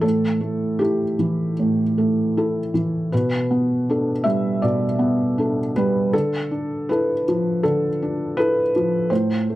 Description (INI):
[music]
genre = neoclassical minimalist piano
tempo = 80 BPM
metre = 4/4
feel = rubato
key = unclear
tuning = A4 = 442 Hz
[part]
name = felt-muted upright piano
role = solo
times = 0.0-9.6 s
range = A2 to E5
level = -18 LUFS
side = equal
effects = none
[sound]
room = wet studio reverb, RT60 0.5 s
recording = dry, gritty hardware recording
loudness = -18 LUFS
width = side -16 dB against mid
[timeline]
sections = 0.0-9.6 A section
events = none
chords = 0.0 A5; 3.1 Gadd9/B; 6.1 Dmadd9